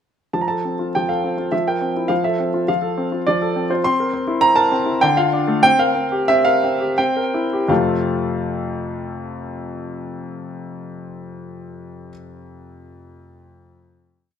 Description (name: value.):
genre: classical-period piano sonatina.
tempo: 82-104 BPM.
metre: 3/4.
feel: straight.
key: F major.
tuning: A4 = 442 Hz.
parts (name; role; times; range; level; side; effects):
clear grand piano; solo; 0.3-14.3 s; F2 to C6; -17 LUFS; equal; none.
room: light reverb.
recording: close, detailed microphones.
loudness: -16 LUFS.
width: side -8 dB against mid.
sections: 0.3-7.7 A section; 7.7-12.1 final chord.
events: slowing down 3.0-7.7.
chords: 0.3 F; 1.5 C7/F; 2.1 F; 3.8 C7; 5.0 Dm; 5.7 C5; 7.0 C7; 7.7 F.